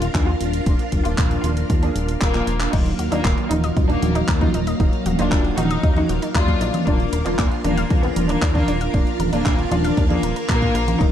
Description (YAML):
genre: italo disco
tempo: 116 BPM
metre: 4/4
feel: straight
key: Eb harmonic minor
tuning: A4 = 440 Hz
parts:
  - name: warm chamber violin section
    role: melody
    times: 0.0-11.1 s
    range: Bb3 to Gb4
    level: -26 LUFS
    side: left 2 dB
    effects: ping-pong delay
  - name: string machine, full ensemble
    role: sustained chords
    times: 0.0-11.1 s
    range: Gb3 to F5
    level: -26 LUFS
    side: equal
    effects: phaser, ensemble chorus
  - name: chorused synth bass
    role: bass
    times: 0.0-11.1 s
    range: Eb1 to Eb2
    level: -23 LUFS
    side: equal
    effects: none
  - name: house drum kit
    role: drums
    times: 0.0-11.1 s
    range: congas, crash cymbal, handclaps, hi-hat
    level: -26 LUFS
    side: right 2 dB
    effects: none
  - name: analog synth brass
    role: stabs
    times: 0.1-11.1 s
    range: Eb3 to F5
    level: -29 LUFS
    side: right 3 dB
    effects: chorus
  - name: electronic kick drum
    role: drums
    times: 0.1-11.1 s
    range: none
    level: -20 LUFS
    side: equal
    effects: none
  - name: analog pluck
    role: arpeggios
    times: 2.7-11.1 s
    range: D4 to Bb5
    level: -31 LUFS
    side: left 3 dB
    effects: chorus, ping-pong delay
room: light reverb, digital ambience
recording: dark, warm production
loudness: -17 LUFS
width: side -10 dB against mid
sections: 0.0-2.7 A section; 2.7-11.1 B section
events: drum fill 2.3-2.7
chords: 0.0 Bb/Eb; 2.7 Ebmadd9; 6.9 Bb/Eb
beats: 0.15 | 0.66 1.18 1.70 2.21 | 2.73 3.25 3.77 4.28 | 4.80 5.32 5.84 6.35 | 6.87 7.39 7.91 8.42 | 8.94 9.46 9.97 10.49 | 11.01